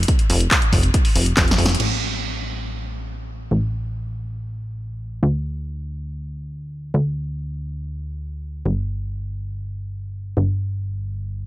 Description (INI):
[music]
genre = uplifting trance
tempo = 140 BPM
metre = 4/4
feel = straight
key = unclear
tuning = A4 = 440 Hz
[part]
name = plucky analog bass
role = bass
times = 0.0-11.5 s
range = F1 to D2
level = -23 LUFS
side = equal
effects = sidechain pumping
[part]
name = punchy analog drum machine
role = drums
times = 0.0-1.9 s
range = crash cymbal, handclaps, hi-hat, snare drum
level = -21 LUFS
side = equal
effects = none
[part]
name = electronic kick drum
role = drums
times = 0.1-1.5 s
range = none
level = -18 LUFS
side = equal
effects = none
[sound]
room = little or no reverb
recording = none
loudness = -20 LUFS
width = side -16 dB against mid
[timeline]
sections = 0.0-1.8 A section; 1.8-11.5 B section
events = drum fill 1.4-1.8; band accent 1.7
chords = none